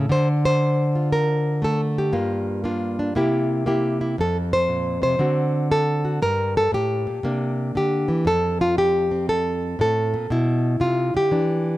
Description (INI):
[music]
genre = solo jazz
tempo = 118 BPM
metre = 4/4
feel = swing 67% on 8ths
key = F major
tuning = A4 = 440 Hz
[part]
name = nylon-string guitar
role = solo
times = 0.0-11.8 s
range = F2 to C5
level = -19 LUFS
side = equal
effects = none
[sound]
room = light reverb, studio reverb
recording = dry, close 1970s-style studio recording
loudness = -19 LUFS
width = side -16 dB against mid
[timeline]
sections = 0.0-11.8 A section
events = none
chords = 0.1 Dm7; 2.1 Gm7; 3.1 C7; 4.2 F5; 5.2 D7; 6.2 Gmadd9; 7.2 C9; 8.3 F; 10.3 Bmadd11